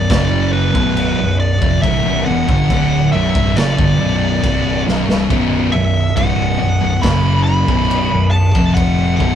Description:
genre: stoner and doom metal.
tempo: 69 BPM.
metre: 4/4.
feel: straight.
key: unclear.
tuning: A4 = 440 Hz.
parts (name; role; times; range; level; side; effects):
fuzz lead guitar; melody; 0.0-9.3 s; B4 to B5; -21 LUFS; equal; distortion.
thick fuzz guitar; riff; 0.0-9.3 s; B1 to F#3; -18 LUFS; left 4 dB; distortion.
thick fuzz guitar; riff; 0.0-9.3 s; B1 to F#3; -18 LUFS; right 5 dB; distortion.
fingered electric bass; bass; 0.0-9.3 s; B0 to G1; -22 LUFS; equal; overdrive.
raw garage drum kit; drums; 0.1-9.3 s; crash cymbal, kick drum, snare drum; -20 LUFS; equal; none.
room: moderate studio ambience, RT60 0.5 s.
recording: band playing live in one room.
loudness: -12 LUFS.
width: side -9 dB against mid.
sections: 0.0-9.3 A section.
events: drum fill 4.9-5.3.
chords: 0.0 Bm.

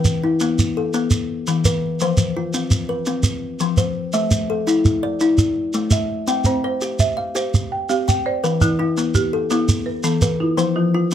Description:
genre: southern african traditional, mbira-style interlocking cycle.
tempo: 112 BPM (dotted quarters).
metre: 12/8.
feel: straight.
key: unclear.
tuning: A4 = 435 Hz.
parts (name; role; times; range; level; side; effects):
kalimba; arpeggios; 0.0-11.1 s; E3 to G5; -20 LUFS; left 3 dB; none.
shekere; percussion; 0.0-11.1 s; none; -20 LUFS; right 2 dB; none.
folk marimba with medium hard mallets; arpeggios; 6.5-11.1 s; E3 to G5; -22 LUFS; right 3 dB; none.
room: little or no reverb.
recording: close, detailed microphones.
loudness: -17 LUFS.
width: side -10 dB against mid.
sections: 0.0-11.1 A section.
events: none.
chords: 0.0 E5; 2.0 F5; 4.1 A5; 6.3 C; 8.4 Em; 10.6 F5.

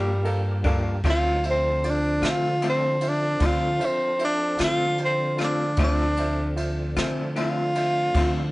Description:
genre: slow blues.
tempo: 51 BPM (dotted quarters).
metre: 12/8.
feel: straight.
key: D minor.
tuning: A4 = 441 Hz.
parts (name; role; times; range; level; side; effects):
warm tenor saxophone; melody; 0.0-8.5 s; G3 to F4; -24 LUFS; equal; cassette tape.
bright upright piano; accompaniment; 0.0-8.5 s; F4 to F5; -33 LUFS; right 3 dB; cassette tape.
electric guitar through a small old amp; accompaniment; 0.0-8.4 s; D3 to F4; -29 LUFS; left 4 dB; tremolo, cassette tape.
tonewheel organ; sustained chords; 0.0-8.5 s; F3 to Bb4; -35 LUFS; right 1 dB; slow rotary speaker, chorus vibrato, cassette tape.
upright bass; bass; 0.0-8.5 s; D2 to D3; -28 LUFS; equal; none.
jazz brush drum kit; drums; 0.3-8.3 s; kick drum, ride cymbal, snare drum; -29 LUFS; equal; cassette tape.
room: light reverb.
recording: home recording on cassette, nothing above 10.3 kHz.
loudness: -21 LUFS.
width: side -20 dB against mid.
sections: 0.0-8.5 A section.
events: tenor saxophone solo 0.0-8.5.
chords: 0.0 Gm7; 1.0 Dm7.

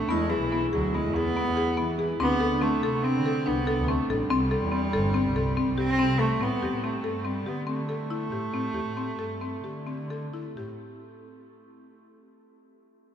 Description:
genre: contemporary instrumental, chamber music in an uneven meter.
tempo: 143 BPM.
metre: 5/4.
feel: straight.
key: A minor.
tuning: A4 = 440 Hz.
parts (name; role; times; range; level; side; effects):
rich cello; melody; 0.0-10.3 s; E3 to C4; -29 LUFS; right 2 dB; none.
vibraphone with medium hard mallets; second line; 0.0-6.2 s; C4 to E4; -33 LUFS; equal; none.
buzzing marimba with medium hard mallets; arpeggios; 0.0-10.8 s; B3 to A4; -29 LUFS; left 2 dB; none.
warm double bass; bass; 0.0-10.7 s; G1 to E3; -31 LUFS; equal; none.
room: wet cathedral reverb, RT60 6.6 s.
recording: in a vast, echoing space.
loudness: -24 LUFS.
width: side -9 dB against mid.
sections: 0.0-6.4 A section; 6.4-10.8 B section.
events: slowing down 7.3-10.8.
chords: 0.1 E; 2.2 D5; 4.3 Am7.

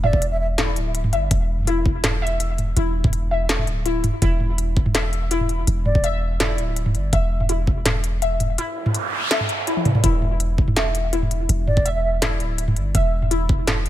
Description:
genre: half-time drum and bass.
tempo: 165 BPM.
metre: 4/4.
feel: half-time.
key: E minor.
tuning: A4 = 440 Hz.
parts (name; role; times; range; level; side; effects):
breathy mellow concert flute; melody; 0.0-0.5, 5.9-6.1, 11.7-12.1 s; D5 to E5; -27 LUFS; right 1 dB; tape echo.
warbly dusty pluck; arpeggios; 0.0-13.9 s; E4 to E5; -26 LUFS; left 2 dB; phaser, lush chorus, dub echo.
long sustained 808-style bass; bass; 0.0-13.9 s; D1 to G1; -22 LUFS; equal; none.
industrial drum kit; drums; 0.0-13.9 s; hi-hat, snare drum, toms; -23 LUFS; equal; none.
electronic kick drum; drums; 0.1-7.8, 10.0-13.6 s; none; -20 LUFS; equal; overdrive.
noise sweep; sound effects; 8.8-10.0 s; none; -26 LUFS; right 4 dB; none.
room: digital ambience.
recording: none.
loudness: -18 LUFS.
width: side -13 dB against mid.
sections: 0.0-13.9 A section.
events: noise sweep 8.8-10.0; drum fill 9.8.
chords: none.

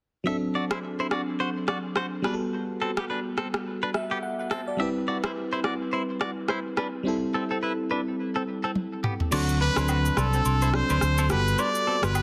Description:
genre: afrobeats.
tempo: 106 BPM.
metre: 4/4.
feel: swing 58% on 16ths.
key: D mixolydian.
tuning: A4 = 437 Hz.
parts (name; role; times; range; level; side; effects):
FM electric piano; accompaniment; 0.2-12.2 s; F#3 to A5; -32 LUFS; equal; chorus.
direct-recorded clean electric guitar; riff; 0.3-12.2 s; B3 to E5; -34 LUFS; equal; tape echo.
afro-pop drum kit; drums; 0.7-12.2 s; crash cymbal, rim click, shaker, toms; -34 LUFS; equal; soft clipping on snare.
clear trumpet; melody; 9.3-12.2 s; F#4 to D5; -29 LUFS; equal; none.
fingered electric bass; bass; 9.3-12.2 s; G1 to D2; -27 LUFS; equal; none.
agogo bells and woodblock; percussion; 9.3-12.2 s; none; -37 LUFS; equal; none.
room: light reverb, digital ambience.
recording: dense, heavily limited modern master.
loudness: -27 LUFS.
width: mono.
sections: 0.3-9.3 A section; 9.3-12.2 B section.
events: FM electric piano fill 3.7-4.8; drum fill 8.8-9.3; kick muted 9.3-12.2.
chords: 0.3 D7; 2.2 Gmaj9; 4.8 Cmaj7; 7.1 Am7; 9.3 D7; 11.3 Gmaj9.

